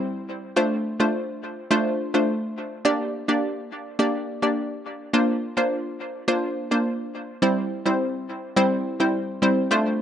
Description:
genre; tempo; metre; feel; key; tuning
afrobeats; 105 BPM; 4/4; straight; unclear; A4 = 440 Hz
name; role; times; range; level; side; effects
analog pluck; solo; 0.0-9.9 s; G3 to D5; -22 LUFS; equal; chorus, dub echo
room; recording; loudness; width
moderate spring reverb, RT60 1.4 s, digital ambience; echo-heavy mix, nothing above 10.5 kHz; -22 LUFS; side -9 dB against mid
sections
0.0-2.9 A section; 2.9-10.0 B section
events
none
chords
0.0 N.C.; 0.6 Dm7; 2.9 Gm; 5.1 Bbadd9; 7.4 C

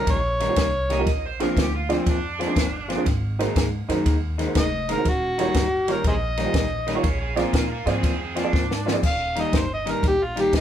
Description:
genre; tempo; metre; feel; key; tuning
electric blues shuffle; 120 BPM; 4/4; swing 67% on 8ths; Eb major; A4 = 440 Hz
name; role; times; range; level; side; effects
overdriven harmonica; melody; 0.0-1.1, 4.6-10.6 s; Eb4 to F5; -24 LUFS; equal; none
electric guitar through a small old amp; riff; 0.0-10.6 s; Eb3 to F4; -27 LUFS; left 3 dB; none
upright bass; bass; 0.0-10.6 s; Eb1 to Bb2; -29 LUFS; equal; none
compact cocktail drum kit; drums; 0.1-10.6 s; crash cymbal, kick drum, ride cymbal, snare drum; -25 LUFS; equal; none
honky-tonk upright piano; accompaniment; 0.4-9.0 s; Db4 to D5; -28 LUFS; right 6 dB; none
overdriven slide guitar; second line; 0.9-3.0, 6.9-8.9 s; C4 to Eb5; -30 LUFS; right 4 dB; none
room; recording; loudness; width
moderate studio reverb, RT60 0.6 s; band playing live in one room; -20 LUFS; side -10 dB against mid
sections
0.0-9.0 A section; 9.0-10.6 A section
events
drum fill 8.5-9.0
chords
0.0 Eb9; 1.1 Bb9; 3.1 Ab9; 5.0 Eb9; 7.0 Bb9; 9.0 Eb

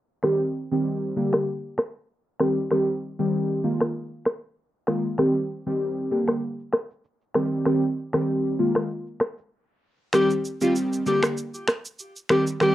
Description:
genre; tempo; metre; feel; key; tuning
afrobeats; 97 BPM; 4/4; swing 55% on 16ths; C minor; A4 = 440 Hz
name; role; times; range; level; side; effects
glassy digital keys; accompaniment; 0.2-12.7 s; D3 to G4; -23 LUFS; equal; chorus, cassette tape
electronic finger snaps, rim click and shaker; drums; 0.2-12.7 s; none; -24 LUFS; equal; cassette tape
breathy alto saxophone; melody; 10.1-12.7 s; F4 to G4; -23 LUFS; left 1 dB; cassette tape
room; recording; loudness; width
moderate studio reverb, RT60 0.6 s; home recording on cassette, low-pass filter; -22 LUFS; side -14 dB against mid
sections
0.2-10.1 A section; 10.1-12.7 B section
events
filter sweep 0.2-10.1; break 9.5-10.1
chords
0.2 Cm; 1.2 Gm; 2.4 Cm; 3.6 Bb7sus4; 5.2 Cm; 6.1 Gm; 7.4 Cm; 8.6 Bb7sus4; 10.1 Cm; 11.1 Gm

